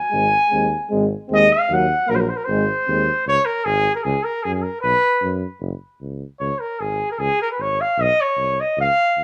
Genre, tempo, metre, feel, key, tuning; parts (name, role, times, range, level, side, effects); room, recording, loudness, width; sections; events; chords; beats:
balkan folk, Balkan brass band; 152 BPM; 2/4; swing 55% on 16ths; Ab mixolydian, Db mixolydian from 3.3 s; A4 = 438 Hz
mellow trumpet; melody; 0.0-9.2 s; Ab4 to Ab5; -20 LUFS; equal; plate reverb
mellow French horn; accompaniment; 0.1-3.0 s; Bb3 to C4; -33 LUFS; equal
warm euphonium; accompaniment; 0.1-3.0 s; Gb3 to Ab3; -25 LUFS; equal; plate reverb
mellow tuba; bass; 0.1-9.2 s; Gb1 to Gb2; -28 LUFS; equal
wet studio reverb, RT60 0.5 s; rough home demo mix; -20 LUFS; mono
0.0-3.3 A section; 3.3-9.2 B section
trumpet solo 0.0-3.3
0.1 Ab; 1.7 Ebm; 2.5 Ab; 3.3 Db5; 4.8 Cb5; 5.6 Gb5; 6.4 Db5; 8.0 Cbadd9
| 0.12 0.51 | 0.91 1.30 | 1.69 2.08 | 2.48 2.87 | 3.26 3.66 | 4.05 4.44 | 4.84 5.23 | 5.63 6.02 | 6.41 6.81 | 7.20 7.60 | 7.99 8.38 | 8.78 9.17